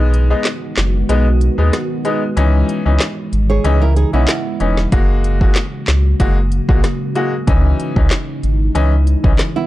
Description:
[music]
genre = dancehall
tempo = 94 BPM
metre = 4/4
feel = straight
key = C# dorian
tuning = A4 = 440 Hz
[part]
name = bright grand piano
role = accompaniment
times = 0.0-9.4 s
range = E3 to F#4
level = -20 LUFS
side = left 2 dB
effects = none
[part]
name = deep dark ambient pad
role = sustained chords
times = 0.0-9.7 s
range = C#3 to D#5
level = -23 LUFS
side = equal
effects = chorus, built-in reverb, sidechain pumping
[part]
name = sub bass with octave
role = bass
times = 0.0-9.4 s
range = E1 to D#2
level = -14 LUFS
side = equal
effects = none
[part]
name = afro-pop drum kit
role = drums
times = 0.1-9.5 s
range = handclaps, hi-hat, kick drum, rim click, snare drum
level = -16 LUFS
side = equal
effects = vintage 12-bit sampler grit
[part]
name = flamenco guitar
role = arpeggios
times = 3.5-4.9, 9.6-9.7 s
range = B3 to C#5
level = -20 LUFS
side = right 7 dB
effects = none
[sound]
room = digital ambience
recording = dark, warm production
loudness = -13 LUFS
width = side -16 dB against mid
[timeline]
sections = 0.0-9.7 A section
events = break 0.0-4.9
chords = 0.0 B6; 2.4 C#madd9; 4.9 F#add9; 7.5 C#madd9

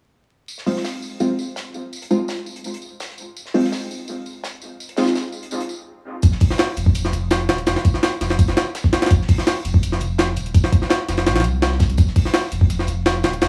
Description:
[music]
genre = drum and bass, jungle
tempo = 167 BPM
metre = 4/4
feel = straight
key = F minor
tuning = A4 = 439 Hz
[part]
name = warm soul drum kit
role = drums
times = 0.5-13.5 s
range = hi-hat, snare drum, tambourine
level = -36 LUFS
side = equal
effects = high-pass filter on hats, small room reverb, high-pass filter on snare, high-pass filter on perc, high-pass filter on room
[part]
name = band-passed chord stab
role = stabs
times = 0.7-5.1 s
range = Ab3 to F4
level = -25 LUFS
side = equal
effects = phaser, analog chorus, dub echo
[part]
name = saturated sub bass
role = bass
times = 6.2-13.5 s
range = Eb1 to C2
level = -24 LUFS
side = equal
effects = none
[part]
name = jungle sampler-style drum kit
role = drums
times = 6.2-13.5 s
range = hi-hat, kick drum, snare drum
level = -19 LUFS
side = equal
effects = overdrive, small room reverb
[sound]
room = light reverb, small room ambience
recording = vinyl crackle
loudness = -19 LUFS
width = mono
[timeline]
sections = 0.5-6.2 A section; 6.2-13.5 B section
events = stop 5.9-6.2; drop 6.2-13.5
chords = 0.5 Fm7; 6.2 N.C.

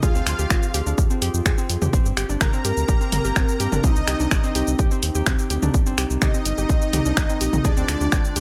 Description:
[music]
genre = melodic techno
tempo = 126 BPM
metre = 4/4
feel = straight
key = C minor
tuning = A4 = 439 Hz
[part]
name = fat analog lead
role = melody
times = 0.0-8.4 s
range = D4 to Bb4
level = -30 LUFS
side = equal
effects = ensemble chorus, sidechain pumping, delay
[part]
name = soft supersaw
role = second line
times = 0.0-8.4 s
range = D5 to Bb5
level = -36 LUFS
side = equal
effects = sidechain pumping, delay
[part]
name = dark analog pad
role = sustained chords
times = 0.0-8.4 s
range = Ab3 to Ab4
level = -35 LUFS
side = equal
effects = none
[part]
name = warbly dusty pluck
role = arpeggios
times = 0.0-8.4 s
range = C4 to Ab4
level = -32 LUFS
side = equal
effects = chorus, cassette tape, sidechain pumping, delay
[part]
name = round analog bass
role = bass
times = 0.0-8.4 s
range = G1 to G2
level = -27 LUFS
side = equal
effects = tube saturation, sidechain pumping
[part]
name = electronic kick drum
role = drums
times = 0.0-8.2 s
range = none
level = -23 LUFS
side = equal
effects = none
[part]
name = house drum kit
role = drums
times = 0.0-8.4 s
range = finger snaps, hi-hat, shaker, toms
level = -27 LUFS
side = equal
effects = none
[sound]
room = little or no reverb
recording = none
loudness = -21 LUFS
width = mono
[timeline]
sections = 0.0-8.4 A section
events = none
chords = 0.0 Ddim; 1.9 Gsus4; 3.8 Cm; 7.6 Ddim

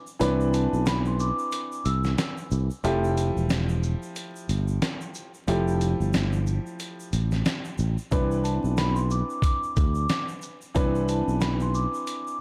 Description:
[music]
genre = hip hop, boom-bap hip-hop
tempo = 91 BPM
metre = 4/4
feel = swing 58% on 16ths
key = C major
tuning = A4 = 441 Hz
[part]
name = egg shaker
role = percussion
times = 0.1-12.4 s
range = none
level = -52 LUFS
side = equal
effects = none
[part]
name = warm upright piano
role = accompaniment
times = 0.2-12.4 s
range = E3 to B4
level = -32 LUFS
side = equal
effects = high-pass filter, low-pass filter
[part]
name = sustaining fretless electric bass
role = bass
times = 0.2-11.9 s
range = E1 to D2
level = -27 LUFS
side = equal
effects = none
[part]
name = dusty soul sampler-style drum kit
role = drums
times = 0.2-12.3 s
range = hi-hat, kick drum, shaker, snare drum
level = -30 LUFS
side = equal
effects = none
[part]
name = vibraphone with soft mallets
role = melody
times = 0.5-2.3, 8.4-12.4 s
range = A5 to E6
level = -34 LUFS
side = equal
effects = high-pass filter, low-pass filter, tape echo
[sound]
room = small room ambience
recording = dark, warm production, vinyl crackle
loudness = -26 LUFS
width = mono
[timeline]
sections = 0.0-12.4 A section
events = break 0.0-8.1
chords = 0.0 Cmaj9; 2.8 Fmaj9; 8.1 Cmaj9

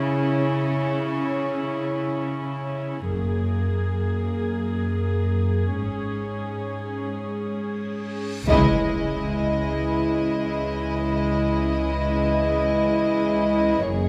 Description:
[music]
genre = cinematic, suspense film score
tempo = free time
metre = none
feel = none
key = C# dorian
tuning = A4 = 440 Hz
[part]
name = rich studio viola section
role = accompaniment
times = 0.0-14.1 s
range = G#3 to G#4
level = -31 LUFS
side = equal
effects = none
[part]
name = dark chamber cello section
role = bass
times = 0.0-14.1 s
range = F#2 to C#3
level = -30 LUFS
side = equal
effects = none
[part]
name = warm chamber double bass section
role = bass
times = 3.1-14.1 s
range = F#1 to C#2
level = -30 LUFS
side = equal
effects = none
[part]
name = reverse cymbal and impact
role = sound effects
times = 8.3-11.2 s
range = none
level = -32 LUFS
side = equal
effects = none
[part]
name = warm studio violin section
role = melody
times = 8.5-14.1 s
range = C#5 to D#5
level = -32 LUFS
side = equal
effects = none
[part]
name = warm chamber violin section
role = second line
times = 8.5-14.1 s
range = E4 to G#4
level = -28 LUFS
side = equal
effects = none
[part]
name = warm French horn section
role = sustained chords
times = 8.5-14.1 s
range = E3 to D#5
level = -29 LUFS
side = equal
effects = none
[sound]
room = moderate scoring stage reverb, RT60 1.8 s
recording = none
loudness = -24 LUFS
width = mono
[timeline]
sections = 0.0-8.5 A section; 8.5-14.1 A section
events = reverse cymbal 8.3; band accent 8.5-9.4; impact 8.5-11.2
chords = 0.0 C#m; 3.1 F#add9; 5.8 G#sus4; 8.5 C#madd9

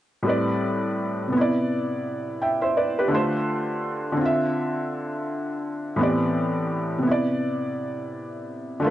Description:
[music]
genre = hip hop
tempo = 84 BPM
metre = 4/4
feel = swing 61% on 16ths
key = C major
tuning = A4 = 441 Hz
[part]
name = felt-muted upright piano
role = solo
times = 0.2-8.9 s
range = A2 to G5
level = -22 LUFS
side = equal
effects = cassette tape
[sound]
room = wet studio reverb, RT60 0.5 s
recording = nothing above 10.3 kHz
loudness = -22 LUFS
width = side -13 dB against mid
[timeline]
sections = 0.3-6.0 A section; 6.0-8.9 B section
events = none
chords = 0.3 Am11; 1.3 Cmaj9; 3.1 Dm7; 4.2 Dm9; 6.0 Am11; 7.0 Cmaj9

